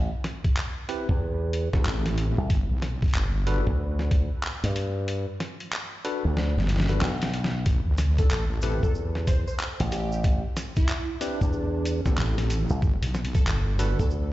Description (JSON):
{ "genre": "glitch hop", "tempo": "93 BPM", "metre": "4/4", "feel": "swing 62% on 16ths", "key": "A dorian", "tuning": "A4 = 439 Hz", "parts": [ { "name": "slap bass with an envelope filter", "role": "bass", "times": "0.0-14.3 s", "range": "A1 to G2", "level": "-26 LUFS", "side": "equal", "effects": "none" }, { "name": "boom bap sampler-style drum kit", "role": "drums", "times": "0.2-14.0 s", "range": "handclaps, hi-hat, snare drum", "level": "-33 LUFS", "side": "equal", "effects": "none" }, { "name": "electronic kick drum", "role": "drums", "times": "0.4-14.1 s", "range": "none", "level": "-24 LUFS", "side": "equal", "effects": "none" }, { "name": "tine electric piano", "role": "stabs", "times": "0.9-14.0 s", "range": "C4 to B4", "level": "-35 LUFS", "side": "left 1 dB", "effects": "slow stereo tremolo, sidechain pumping, dub echo" }, { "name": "wobble bass", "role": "bass", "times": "1.9-14.0 s", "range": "G1 to D2", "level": "-25 LUFS", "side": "equal", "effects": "chorus" }, { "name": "cabasa", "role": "percussion", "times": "7.7-14.3 s", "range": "none", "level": "-45 LUFS", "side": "right 4 dB", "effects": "none" }, { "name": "plucky unison lead", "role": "melody", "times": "8.2-14.1 s", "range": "D4 to C5", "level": "-35 LUFS", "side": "equal", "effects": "wide subtle chorus, cassette tape, dub echo" } ], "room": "little or no reverb", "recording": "played on a big sound system in a bare room, large studio reverb, nothing above 7.9 kHz", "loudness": "-23 LUFS", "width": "side -16 dB against mid", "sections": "0.0-14.3 A section", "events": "kick drops out 5.1-7.7; drum fill 6.4-7.7", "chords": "0.0 Am7; 2.5 Gmaj9; 7.7 Am7; 12.8 Gmaj9" }